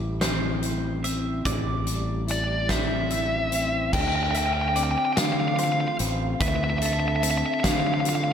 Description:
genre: post-rock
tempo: 48 BPM (dotted quarters)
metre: 6/8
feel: straight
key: unclear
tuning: A4 = 440 Hz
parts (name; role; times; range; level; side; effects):
- electric guitar through a small old amp; arpeggios; 0.0-8.3 s; A2 to F4; -32 LUFS; left 3 dB; spring reverb, slapback echo
- growling fingered electric bass; bass; 0.0-8.3 s; A1 to D3; -28 LUFS; equal; overdrive
- twelve-string electric guitar; arpeggios; 0.2-8.1 s; A4 to E5; -36 LUFS; right 5 dB; spring reverb, slapback echo
- huge arena drum kit; drums; 0.2-8.2 s; crash cymbal, hi-hat, kick drum, snare drum; -28 LUFS; equal; none
- nasal lead guitar with a parked wah; melody; 2.3-8.3 s; D5 to G5; -26 LUFS; equal; overdrive, slapback echo
room: moderate lush hall reverb, RT60 2.4 s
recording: big arena sound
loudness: -22 LUFS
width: side -8 dB against mid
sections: 0.0-3.9 A section; 3.9-8.3 B section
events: none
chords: 0.0 Am7; 3.9 Dm7

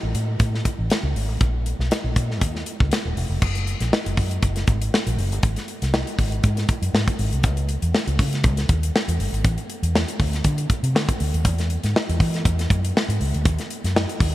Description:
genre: polished 1980s jazz-funk pop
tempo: 120 BPM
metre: 4/4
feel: swing 54% on 16ths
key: unclear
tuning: A4 = 442 Hz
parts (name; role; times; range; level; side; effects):
- vintage muted fingered electric bass; bass; 0.0-14.3 s; D#1 to E3; -23 LUFS; equal; none
- modern studio drum kit; drums; 0.1-14.3 s; crash cymbal, hi-hat, kick drum, snare drum; -22 LUFS; equal; none
room: light reverb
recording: none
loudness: -20 LUFS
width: side -16 dB against mid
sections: 0.0-3.4 A section; 3.4-14.3 B section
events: none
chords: none

